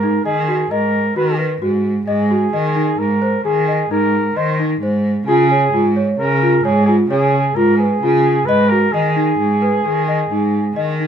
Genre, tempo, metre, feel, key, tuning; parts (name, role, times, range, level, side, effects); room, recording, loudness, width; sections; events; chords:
contemporary instrumental, chamber music in an uneven meter; 131 BPM; 7/4; straight; G# minor; A4 = 440 Hz
warm flugelhorn; melody; 0.0-11.1 s; G#4 to B#4; -18 LUFS; right 2 dB
large celesta; arpeggios; 0.0-11.1 s; D#4 to D#5; -19 LUFS; left 1 dB
rich cello; bass; 0.0-11.1 s; G#2 to D#3; -18 LUFS; equal
moderate studio reverb, RT60 0.8 s; -14 LUFS; side -8 dB against mid
0.0-11.1 A section
0.0 G#7(no3); 2.1 G#; 5.3 C#; 8.5 G#5